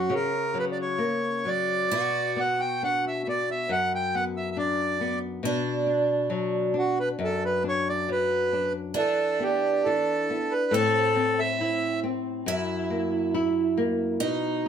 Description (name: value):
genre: fado-style ballad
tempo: 68 BPM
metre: 2/4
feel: rubato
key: B minor, E minor from 9.0 s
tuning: A4 = 440 Hz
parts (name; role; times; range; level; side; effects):
- accordion; melody; 0.0-12.0 s; F#4 to G5; -25 LUFS; right 1 dB; none
- picked twelve-string acoustic guitar; second line; 0.0-14.7 s; C4 to F#4; -29 LUFS; right 4 dB; none
- flamenco guitar; accompaniment; 0.0-14.7 s; F#2 to E4; -29 LUFS; left 3 dB; none
room: moderate small room reverb, RT60 0.5 s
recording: none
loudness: -24 LUFS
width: side -8 dB against mid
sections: 0.0-9.0 A section; 9.0-14.7 B section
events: none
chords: 0.0 F#; 1.9 Bm; 9.0 E5; 10.7 Am; 12.5 F#7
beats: | 0.10 0.99 | 1.91 2.81 | 3.69 4.57 | 5.44 6.30 | 7.18 8.07 | 8.97 9.86 | 10.74 11.61 | 12.47 13.34 | 14.21